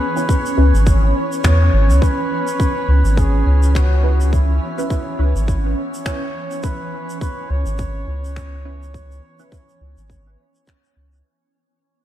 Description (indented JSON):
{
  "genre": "ambient dub",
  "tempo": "104 BPM",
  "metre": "4/4",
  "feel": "swing 57% on 16ths",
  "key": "C# minor",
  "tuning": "A4 = 440 Hz",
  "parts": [
    { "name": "trumpet with bucket mute", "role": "melody", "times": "0.0-10.7 s", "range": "E4 to C#5", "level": "-26 LUFS", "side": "equal", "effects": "dub echo" },
    { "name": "granular cloud pad", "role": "sustained chords", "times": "0.0-11.3 s", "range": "E3 to G#5", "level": "-26 LUFS", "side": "right 1 dB", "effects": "built-in reverb" },
    { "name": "bubbling stepped-filter texture", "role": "texture", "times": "0.0-11.3 s", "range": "C#5", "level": "-32 LUFS", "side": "right 2 dB", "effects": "chorus, built-in reverb" },
    { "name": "filtered dub chord stab", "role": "stabs", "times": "0.2-9.5 s", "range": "C#4 to B4", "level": "-26 LUFS", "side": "left 1 dB", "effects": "phaser, ensemble chorus, dub echo" },
    { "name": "shaker and finger snaps", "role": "drums", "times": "0.2-11.2 s", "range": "none", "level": "-30 LUFS", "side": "left 1 dB", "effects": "studio reverb" },
    { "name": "electronic kick drum", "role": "drums", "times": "0.3-10.8 s", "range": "none", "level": "-20 LUFS", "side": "equal", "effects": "studio reverb" },
    { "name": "soft dub sub bass", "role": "bass", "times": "0.6-11.2 s", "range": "G#1 to E2", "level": "-15 LUFS", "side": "equal", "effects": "none" }
  ],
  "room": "small room reverb",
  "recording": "dark, warm production",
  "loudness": "-15 LUFS",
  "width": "side -12 dB against mid",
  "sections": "0.0-11.3 A section",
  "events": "fade-out 2.0-11.3",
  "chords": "0.0 C#m7"
}